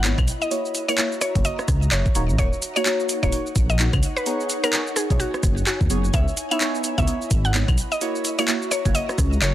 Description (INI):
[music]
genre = UK garage, two-step garage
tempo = 128 BPM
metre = 4/4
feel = swing 60% on 16ths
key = unclear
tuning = A4 = 440 Hz
[part]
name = mallet-like synth pluck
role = melody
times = 0.0-9.5 s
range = F#4 to F#5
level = -27 LUFS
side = left 1 dB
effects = chorus, digital delay
[part]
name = deep mellow chord stab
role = stabs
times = 0.0-9.5 s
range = A#3 to C#5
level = -27 LUFS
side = right 1 dB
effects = chorus, phaser, digital delay
[part]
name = dark detuned saw bass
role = bass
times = 0.0-9.5 s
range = D#1 to D#2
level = -22 LUFS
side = equal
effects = none
[part]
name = garage drum kit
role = drums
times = 0.0-9.5 s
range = claves, handclaps, hi-hat, rim click, shaker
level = -25 LUFS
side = equal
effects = overdrive
[part]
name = ethereal airy pad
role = texture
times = 0.0-9.5 s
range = D#4 to B5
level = -33 LUFS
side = equal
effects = ensemble chorus, built-in reverb, sidechain pumping
[part]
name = electronic kick drum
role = drums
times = 0.2-9.3 s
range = none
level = -22 LUFS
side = equal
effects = overdrive
[sound]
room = light reverb, digital ambience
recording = dense, heavily limited modern master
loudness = -19 LUFS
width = side -13 dB against mid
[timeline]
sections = 0.0-9.5 A section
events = none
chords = 0.3 F#7; 2.2 D#m7; 4.0 B69; 6.1 C#m9; 7.8 F#7